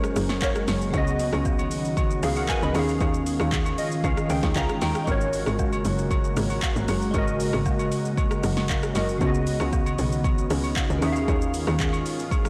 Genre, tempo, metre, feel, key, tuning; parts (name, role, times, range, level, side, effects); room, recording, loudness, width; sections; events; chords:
amapiano; 116 BPM; 4/4; straight; G# minor; A4 = 439 Hz
glassy digital keys; accompaniment; 0.0-12.5 s; C#3 to B5; -30 LUFS; equal; chorus
glassy FM pad; sustained chords; 0.0-12.5 s; C#3 to G#4; -32 LUFS; equal; ensemble chorus, built-in reverb, sidechain pumping
deep house drum kit; drums; 0.0-12.5 s; handclaps, hi-hat, kick drum, rim click, shaker, snare drum; -29 LUFS; equal; overdrive
tight log drum bass; bass; 0.2-12.0 s; F#1 to D#2; -30 LUFS; equal; transformer saturation
agogo bells and woodblock; percussion; 0.3-12.4 s; -38 LUFS; equal
light reverb; blown-out, overdriven recording, overdrive; -24 LUFS; mono
0.0-12.5 A section
synth keys fill 3.5-5.1
0.0 G#9sus4; 0.9 C#9sus4; 2.7 D#9sus4; 5.1 G#9sus4; 9.2 C#9sus4; 11.0 D#9sus4